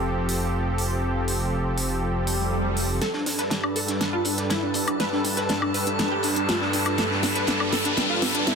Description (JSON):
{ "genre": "progressive house", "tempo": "121 BPM", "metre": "4/4", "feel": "straight", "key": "G mixolydian", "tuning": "A4 = 440 Hz", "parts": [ { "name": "supersaw pad", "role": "sustained chords", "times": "0.0-8.6 s", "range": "G2 to B4", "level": "-28 LUFS", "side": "equal", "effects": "low-pass filter" }, { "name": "dark detuned saw bass", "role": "bass", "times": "0.0-3.0 s", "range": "F1", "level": "-27 LUFS", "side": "equal", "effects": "none" }, { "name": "pop drum kit", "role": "drums", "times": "0.3-8.6 s", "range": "hi-hat, snare drum, woodblock", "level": "-28 LUFS", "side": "equal", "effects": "none" }, { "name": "swell and riser", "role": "sound effects", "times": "2.2-8.6 s", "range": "none", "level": "-30 LUFS", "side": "equal", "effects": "none" }, { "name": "wide unison pluck", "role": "arpeggios", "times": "3.0-8.6 s", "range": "D4 to B4", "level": "-27 LUFS", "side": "equal", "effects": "ensemble chorus, ping-pong delay" }, { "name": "crunchy breakbeat drum kit", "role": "drums", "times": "3.0-8.6 s", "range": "hi-hat, snare drum", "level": "-36 LUFS", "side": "left 1 dB", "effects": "none" }, { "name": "drifting glass-harmonics texture", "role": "texture", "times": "3.5-8.6 s", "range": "A4 to A5", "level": "-32 LUFS", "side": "right 1 dB", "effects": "chorus, built-in reverb" } ], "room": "moderate lush hall reverb, RT60 1.7 s", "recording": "dense, heavily limited modern master", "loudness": "-22 LUFS", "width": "side -6 dB against mid", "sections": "0.0-3.0 A section; 3.0-8.6 B section", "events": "swell 2.2-3.0; build-up 3.0-8.6; drum fill 3.0-8.6; filter sweep on supersaw synth 3.0-8.6; riser 4.5-8.6", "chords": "0.0 Fadd9; 3.0 Gadd9", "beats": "0.04 0.54 | 1.03 1.53 2.02 2.52 | 3.02 3.51 4.01 4.50 | 5.00 5.50 5.99 6.49 | 6.98 7.48 7.97 8.47" }